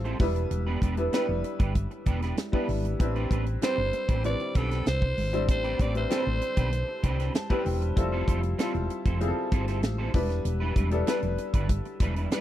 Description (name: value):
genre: polished 1980s jazz-funk pop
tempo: 96 BPM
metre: 4/4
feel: straight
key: A minor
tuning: A4 = 438 Hz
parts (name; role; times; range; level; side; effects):
- clear grand piano; accompaniment; 0.0-12.4 s; G3 to A5; -31 LUFS; left 2 dB; lush chorus
- electric guitar at the edge of break-up; riff; 0.0-12.4 s; G3 to C5; -36 LUFS; right 4 dB; ensemble chorus
- woody fretless electric bass; bass; 0.0-12.3 s; E1 to C2; -29 LUFS; equal; none
- tight funk drum kit; drums; 0.1-12.4 s; hi-hat, kick drum, snare drum; -27 LUFS; equal; none
- congas; percussion; 0.2-12.4 s; none; -42 LUFS; right 5 dB; none
- raspy alto saxophone; melody; 3.6-7.6 s; A4 to D5; -31 LUFS; right 1 dB; slapback echo
room: little or no reverb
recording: dry, close 1970s-style studio recording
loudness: -25 LUFS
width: side -12 dB against mid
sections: 0.0-12.4 A section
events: grand piano fill 7.0-8.0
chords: 0.2 Em7; 3.0 Am11; 8.0 Fmaj7; 10.1 Em7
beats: | 0.51 1.13 1.75 2.37 | 3.00 3.62 4.24 4.86 | 5.48 6.11 6.73 7.35 | 7.97 8.59 9.21 9.83 | 10.46 11.07 11.70 12.32